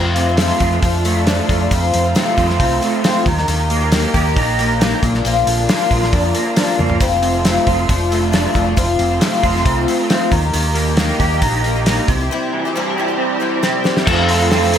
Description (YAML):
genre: folk rock and heartland rock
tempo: 136 BPM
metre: 4/4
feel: straight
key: F major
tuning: A4 = 437 Hz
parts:
  - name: picked twelve-string acoustic guitar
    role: accompaniment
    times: 0.0-14.8 s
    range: F2 to A4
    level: -20 LUFS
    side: left 4 dB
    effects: analog chorus
  - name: rich studio string section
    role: sustained chords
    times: 0.0-14.8 s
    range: C4 to C5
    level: -27 LUFS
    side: right 1 dB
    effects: none
  - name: electric guitar through a small old amp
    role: riff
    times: 0.0-14.8 s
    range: F2 to G4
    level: -19 LUFS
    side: right 2 dB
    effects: ensemble chorus
  - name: hollow-body short-scale fingered electric bass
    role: bass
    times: 0.0-14.8 s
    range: F1 to F2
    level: -19 LUFS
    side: equal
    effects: none
  - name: cloth-damped thuddy drum kit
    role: drums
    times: 0.2-14.8 s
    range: crash cymbal, hi-hat, kick drum, snare drum, toms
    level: -19 LUFS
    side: equal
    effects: gated reverb
  - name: overdriven slide guitar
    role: melody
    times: 14.1-14.8 s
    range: A4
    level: -19 LUFS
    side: right 5 dB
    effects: lush chorus, ping-pong delay
  - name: dark upright piano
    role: accompaniment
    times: 14.1-14.8 s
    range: F4 to G5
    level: -29 LUFS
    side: right 4 dB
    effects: none
room: moderate plate reverb, RT60 2.2 s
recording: bright 1980s-style digital production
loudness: -13 LUFS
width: side -9 dB against mid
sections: 0.0-14.1 A section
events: drum fill 6.8, 13.6-14.1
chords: 0.0 F; 0.8 Dm/F; 1.7 F; 3.3 Eb; 5.0 Bb; 7.0 F; 7.9 Dm/F; 8.8 F; 10.3 Eb; 12.1 C; 14.1 F